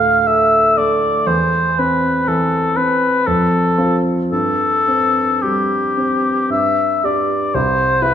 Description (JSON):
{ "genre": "classical, romantic duo for oboe and grand piano", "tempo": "55-62 BPM", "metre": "3/4", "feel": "rubato", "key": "C major", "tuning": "A4 = 441 Hz", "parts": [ { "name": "warm oboe", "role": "melody", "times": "0.0-8.1 s", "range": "G4 to F5", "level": "-15 LUFS", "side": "left 2 dB", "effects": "none" }, { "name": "warm grand piano", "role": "accompaniment", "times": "0.0-8.1 s", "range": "C2 to A4", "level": "-18 LUFS", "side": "right 1 dB", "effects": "none" } ], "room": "wet recital hall reverb, RT60 1.7 s", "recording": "minimal, uncompressed stereo recording", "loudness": "-14 LUFS", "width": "side -9 dB against mid", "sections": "0.0-7.6 A section", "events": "none", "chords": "0.0 Dm; 1.3 C/E; 3.3 F; 4.3 C5/G; 6.5 G5; 7.6 C", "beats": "0.28 | 1.29 2.27 3.26 | 4.31 5.41 6.49 | 7.55" }